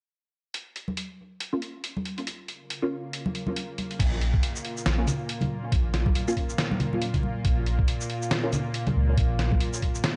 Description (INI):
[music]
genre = deep dubstep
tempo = 139 BPM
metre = 4/4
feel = swing 58% on 16ths, half-time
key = Bb minor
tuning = A4 = 440 Hz
[part]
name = trip hop sampler-style drum kit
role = drums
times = 0.5-10.1 s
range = crash cymbal, hi-hat, shaker, snare drum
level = -34 LUFS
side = equal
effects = none
[part]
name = congas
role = percussion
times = 0.9-9.6 s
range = none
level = -34 LUFS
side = equal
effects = dub echo
[part]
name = filtered dub chord stab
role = stabs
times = 1.5-8.5 s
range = Bb3 to F4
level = -34 LUFS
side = equal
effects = phaser, ensemble chorus, dub echo
[part]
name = bowed-like drone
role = sustained chords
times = 2.7-10.2 s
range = Bb2 to F4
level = -36 LUFS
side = equal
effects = built-in reverb
[part]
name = soft dub sub bass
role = bass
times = 4.0-9.6 s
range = Bb1 to Db2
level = -28 LUFS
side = equal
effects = tube saturation
[part]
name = electronic kick drum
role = drums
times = 4.0-9.9 s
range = none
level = -28 LUFS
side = equal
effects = none
[sound]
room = little or no reverb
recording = dry, gritty hardware recording, cassette tape, nothing above 10.9 kHz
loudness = -27 LUFS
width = mono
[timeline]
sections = 0.5-4.0 A section; 4.0-10.2 B section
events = none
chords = 0.5 Bbm; 4.0 Bb5